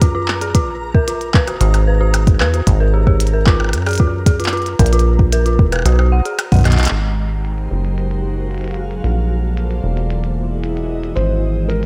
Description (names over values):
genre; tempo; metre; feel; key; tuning
IDM; 113 BPM; 4/4; straight; unclear; A4 = 440 Hz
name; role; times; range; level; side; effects
dark detuned synth bell; arpeggios; 0.0-6.8 s; F4 to F#5; -24 LUFS; equal; chorus, vintage 12-bit sampler grit, dub echo
deep acid bass; bass; 0.0-11.9 s; E1 to Gb2; -19 LUFS; equal; none
electronic kick drum; drums; 0.0-6.8 s; none; -15 LUFS; equal; studio reverb
glitchy drum kit; drums; 0.0-11.9 s; crash cymbal, handclaps, hi-hat, percussion blips; -25 LUFS; equal; low-pass filter on snare, studio reverb, low-pass filter on hats, low-pass filter on perc, low-pass filter on cymbals, dub echo
flickering grainy texture; texture; 0.0-6.9 s; Bb5; -36 LUFS; equal; built-in reverb, sidechain pumping
glassy FM pad; sustained chords; 7.1-11.9 s; E3 to F5; -27 LUFS; equal; ensemble chorus, built-in reverb
felt-muted upright piano; melody; 11.2-11.9 s; Bb4 to C5; -24 LUFS; equal; tape echo
room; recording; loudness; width
digital ambience; echo-heavy mix; -16 LUFS; mono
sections
0.0-6.9 A section; 6.9-11.9 B section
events
drum fill 6.7; band accent 6.9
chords
0.0 Gbmaj9; 0.5 Bb5; 1.3 Eadd9; 2.7 Absus2; 3.5 Gbmaj9; 4.8 Bb5; 5.6 Emaj7sus2; 6.9 Abmaj9; 7.7 Gbmaj9; 9.0 Bbmaj9; 9.8 Emaj9; 11.2 Abmaj9